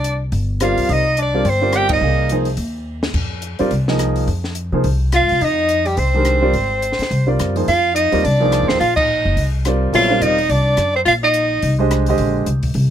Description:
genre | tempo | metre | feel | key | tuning
modal jazz | 212 BPM | 4/4 | swing 59% on 8ths | F dorian from 7.7 s | A4 = 438 Hz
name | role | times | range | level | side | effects
breathy soprano saxophone | melody | 0.0-2.4, 5.2-11.8 s | G4 to G5 | -18 LUFS | right 3 dB | none
warm tenor saxophone | second line | 0.0-2.4, 5.1-11.8 s | G3 to G4 | -21 LUFS | left 5 dB | none
upright bass | bass | 0.0-12.9 s | E1 to C3 | -19 LUFS | equal | none
compact cocktail drum kit | drums | 0.0-12.8 s | crash cymbal, hi-hat, kick drum, ride cymbal, rim click, snare drum | -27 LUFS | left 1 dB | none
warm baby grand piano | accompaniment | 0.6-12.5 s | D3 to F5 | -19 LUFS | right 2 dB | none
room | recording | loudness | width
little or no reverb | close, detailed microphones | -14 LUFS | side -10 dB against mid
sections
0.0-7.7 A section; 7.7-12.9 B section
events
band accent 1.9, 8.9; drum fill 2.9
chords
0.0 Cm9; 3.1 Fm9; 7.7 F9sus4

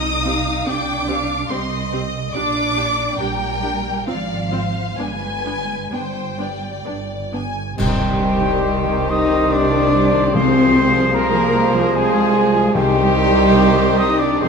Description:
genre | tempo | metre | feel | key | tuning
classical, slow romantic movement for symphony orchestra | 63-76 BPM | 3/4 | rubato | C minor | A4 = 440 Hz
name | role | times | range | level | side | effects
dark symphonic violin section | melody | 0.0-14.5 s | Eb4 to Eb6 | -26 LUFS | left 1 dB | none
warm symphonic violin section | second line | 0.0-14.5 s | C4 to Ab5 | -28 LUFS | left 3 dB | none
warm symphonic cello section | bass | 0.0-14.5 s | F3 to Eb4 | -23 LUFS | right 2 dB | none
warm symphonic double bass section | bass | 0.0-14.5 s | F1 to C2 | -25 LUFS | right 4 dB | none
warm symphonic viola section | accompaniment | 0.2-14.5 s | Eb3 to G4 | -26 LUFS | right 4 dB | none
clear oboe | second line | 7.8-14.5 s | C5 | -27 LUFS | right 4 dB | none
mellow concert flute | second line | 7.8-14.5 s | G5 to Eb6 | -22 LUFS | left 3 dB | none
warm clarinet | second line | 7.8-14.5 s | G4 to Ab4 | -27 LUFS | left 2 dB | none
clear bassoon | accompaniment | 7.8-14.5 s | Eb3 to F3 | -24 LUFS | right 2 dB | none
mellow French horn section | sustained chords | 7.8-14.5 s | G3 to Eb4 | -22 LUFS | left 5 dB | none
warm trumpet section | stabs | 7.8-14.5 s | G4 to Eb5 | -23 LUFS | right 1 dB | none
clear tuba | bass | 7.8-14.5 s | F1 to C2 | -25 LUFS | right 2 dB | none
clash cymbals and concert bass drum | percussion | 7.8-9.5 s | none | -25 LUFS | equal | none
timpani | percussion | 10.3-13.9 s | C3 | -24 LUFS | left 5 dB | none
room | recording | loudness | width
wet scoring stage reverb, RT60 1.6 s | none | -15 LUFS | side -5 dB against mid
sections
0.0-7.8 A section; 7.8-14.5 B section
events
band accent 7.8-8.6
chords
0.0 Cm; 2.3 Gm/Bb; 4.1 Fm/Ab; 5.0 G; 7.8 Cm; 10.3 Fm/C; 12.7 Cm

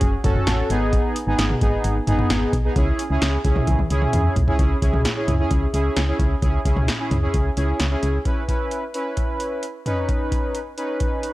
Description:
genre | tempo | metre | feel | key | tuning
synth-pop | 131 BPM | 4/4 | straight | C# minor | A4 = 439 Hz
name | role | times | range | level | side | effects
analog synth brass | accompaniment | 0.0-11.3 s | B3 to B4 | -24 LUFS | equal | chorus
solid FM bass | bass | 0.0-8.2 s | F#1 to E2 | -22 LUFS | equal | none
electro analog drum machine | drums | 0.0-11.3 s | hi-hat, kick drum, snare drum, toms | -22 LUFS | equal | none
room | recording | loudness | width
digital ambience | dry, gritty hardware recording, transformer saturation, cassette tape | -19 LUFS | side -17 dB against mid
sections
0.0-4.6 A section; 4.6-8.3 B section; 8.3-11.3 C section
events
drum fill 3.7-4.6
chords
0.0 F#m; 0.7 G#m; 2.8 C#m; 8.3 C#m7; 9.9 Badd9

